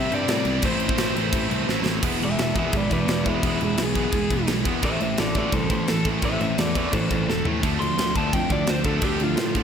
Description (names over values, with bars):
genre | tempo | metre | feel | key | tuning
punk rock | 172 BPM | 4/4 | straight | A minor | A4 = 439 Hz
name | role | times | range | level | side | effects
overdriven electric guitar | melody | 0.0-9.6 s | G#3 to C6 | -27 LUFS | left 1 dB | slapback echo, ping-pong delay
scooped high-gain guitar | riff | 0.0-9.6 s | A2 to E4 | -31 LUFS | equal | distortion, slapback echo
sludgy distorted guitar | riff | 0.0-9.6 s | E2 to D4 | -29 LUFS | left 9 dB | overdrive, slapback echo
tight distorted guitar | riff | 0.0-9.6 s | A2 to E4 | -28 LUFS | right 11 dB | distortion
modern bright picked electric bass | bass | 0.0-9.6 s | E1 to A2 | -29 LUFS | equal | none
tight metal drum kit | drums | 0.1-9.6 s | crash cymbal, kick drum, snare drum, toms | -26 LUFS | equal | none
room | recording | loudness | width
moderate lush hall reverb, RT60 1.7 s, small room ambience | big arena sound | -20 LUFS | side -7 dB against mid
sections
0.0-2.0 A section; 2.0-9.6 B section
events
drum fill 1.7-2.0, 7.3-7.6; overdriven electric guitar solo 2.0-9.6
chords
0.0 C; 0.6 Am; 2.0 E; 4.8 Am; 7.6 Dm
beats
0.29 | 0.64 0.99 1.34 1.69 | 2.03 2.38 2.73 3.08 | 3.43 3.78 4.13 4.48 | 4.83 5.18 5.53 5.88 | 6.23 6.58 6.93 7.28 | 7.63 7.98 8.33 8.68 | 9.03 9.38